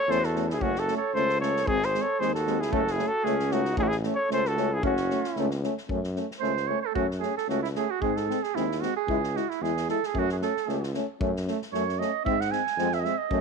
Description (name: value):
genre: balkan folk, Balkan brass band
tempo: 114 BPM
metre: 2/4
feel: swing 54% on 16ths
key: F# dorian sharp4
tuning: A4 = 439 Hz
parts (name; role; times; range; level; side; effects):
- dark trumpet; melody; 0.0-5.6 s; F#4 to C#5; -27 LUFS; left 1 dB; none
- clear flugelhorn; second line; 0.0-13.4 s; C#4 to G#5; -30 LUFS; right 13 dB; none
- warm euphonium; accompaniment; 0.1-13.4 s; B#3 to E4; -33 LUFS; left 16 dB; none
- warm trombone; accompaniment; 0.1-13.4 s; G#3 to A3; -34 LUFS; right 12 dB; none
- warm tuba; bass; 0.1-13.4 s; F#1 to G#2; -31 LUFS; left 1 dB; none
- unplugged drum kit; percussion; 0.1-13.4 s; kick drum, snare drum; -38 LUFS; left 2 dB; none
room: light reverb, studio reverb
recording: 1960s-style stereo with parts hard left and right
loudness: -24 LUFS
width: side -5 dB against mid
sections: 0.0-5.9 A section; 5.9-13.4 B section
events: flugelhorn solo 5.9-13.4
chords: 0.0 A; 0.6 F#m; 1.7 G#; 2.7 F#m; 3.8 A; 4.8 F#m; 8.0 G#; 9.1 C#m; 10.1 F#m; 12.3 G#